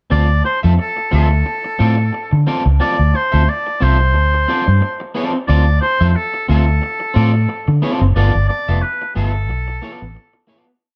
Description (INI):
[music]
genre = funk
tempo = 90 BPM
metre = 4/4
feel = swing 56% on 16ths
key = D dorian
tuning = A4 = 440 Hz
[part]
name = clear oboe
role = melody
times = 0.1-10.5 s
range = A4 to D5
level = -22 LUFS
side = equal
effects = none
[part]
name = electric guitar at the edge of break-up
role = accompaniment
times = 0.1-10.7 s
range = B3 to E5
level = -25 LUFS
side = equal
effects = spring reverb
[part]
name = vintage muted fingered electric bass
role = bass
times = 0.1-10.2 s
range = F1 to D3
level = -16 LUFS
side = equal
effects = none
[sound]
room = light reverb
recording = dark, warm production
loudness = -16 LUFS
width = mono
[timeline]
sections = 0.1-10.8 groove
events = fade-out 8.2-10.8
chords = 0.1 Dm7; 8.2 G9